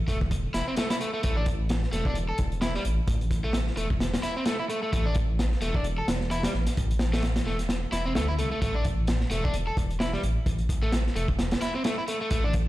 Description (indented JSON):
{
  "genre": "breakbeat, breaks",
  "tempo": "130 BPM",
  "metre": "4/4",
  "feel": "swing 57% on 16ths",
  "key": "A minor",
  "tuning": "A4 = 441 Hz",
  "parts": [
    { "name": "dark detuned saw bass", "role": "bass", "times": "0.0-12.7 s", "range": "E1 to D2", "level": "-28 LUFS", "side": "equal", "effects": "none" },
    { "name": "overdriven electric guitar", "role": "riff", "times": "0.1-12.5 s", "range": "G3 to A4", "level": "-31 LUFS", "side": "equal", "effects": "tape echo" },
    { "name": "crunchy breakbeat drum kit", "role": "drums", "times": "0.1-12.7 s", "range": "hi-hat, kick drum, snare drum", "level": "-28 LUFS", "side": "equal", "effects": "none" }
  ],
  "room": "light reverb",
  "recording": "played on a big sound system in a bare room, stone room reverb",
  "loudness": "-24 LUFS",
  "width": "side -16 dB against mid",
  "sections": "0.0-12.7 A section",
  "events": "none",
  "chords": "0.0 A5"
}